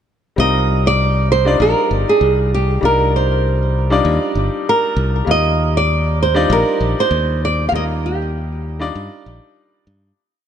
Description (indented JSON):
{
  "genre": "sunset chillout",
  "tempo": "98 BPM",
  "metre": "4/4",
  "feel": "straight",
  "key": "C minor",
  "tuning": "A4 = 440 Hz",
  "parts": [
    { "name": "flamenco guitar", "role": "melody", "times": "0.4-9.2 s", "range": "G4 to F5", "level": "-17 LUFS", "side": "right 2 dB", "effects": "vintage 12-bit sampler grit, ping-pong delay" },
    { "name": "clear baby grand piano", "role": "accompaniment", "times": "0.4-10.2 s", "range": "G3 to D5", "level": "-21 LUFS", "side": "left 2 dB", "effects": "auto-pan, ping-pong delay" },
    { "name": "modern bright fingered electric bass", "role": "bass", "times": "0.4-10.1 s", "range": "G1 to G2", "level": "-18 LUFS", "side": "equal", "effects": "none" }
  ],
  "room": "light reverb",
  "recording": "none",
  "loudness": "-14 LUFS",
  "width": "side -9 dB against mid",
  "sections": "0.4-10.2 groove",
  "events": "fade-out 6.9-10.2",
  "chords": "0.4 Cm11; 5.3 Ebmaj7"
}